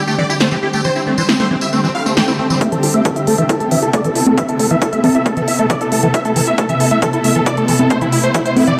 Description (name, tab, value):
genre	uplifting trance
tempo	136 BPM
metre	4/4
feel	straight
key	A minor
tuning	A4 = 440 Hz
part	big supersaw lead	melody	0.0-8.7 s	C4 to G5	-21 LUFS	equal	sidechain pumping, low-pass filter, digital delay
part	liquid acid bass	arpeggios	0.1-8.7 s	E3 to E4	-21 LUFS	equal	analog chorus, cassette tape, sidechain pumping, delay
part	tambourine	percussion	0.1-2.6 s	none	-28 LUFS	equal	none
part	big-room dance drum kit	drums	0.4-8.8 s	congas, hi-hat, snare drum	-20 LUFS	equal	overdrive
part	swell	sound effects	2.0-2.6 s	none	-29 LUFS	equal	none
part	electronic kick drum	drums	2.6-8.4 s	none	-22 LUFS	equal	overdrive, high-pass filter on kick, high-pass filter on room
room	moderate digital room reverb, RT60 1.1 s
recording	dark, warm production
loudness	-15 LUFS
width	mono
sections	0.0-2.6 A section; 2.6-8.8 B section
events	swell 2.0-2.6; build-up 2.6-8.8; filter sweep on supersaw synth 2.6-8.8; filter sweep on acid bass 2.6-8.8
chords	0.0 Csus2; 2.6 Amadd9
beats	0.41 | 0.85 1.29 1.73 2.17 | 2.61 3.05 3.49 3.94 | 4.38 4.82 5.26 5.70 | 6.14 6.58 7.02 7.46 | 7.91 8.35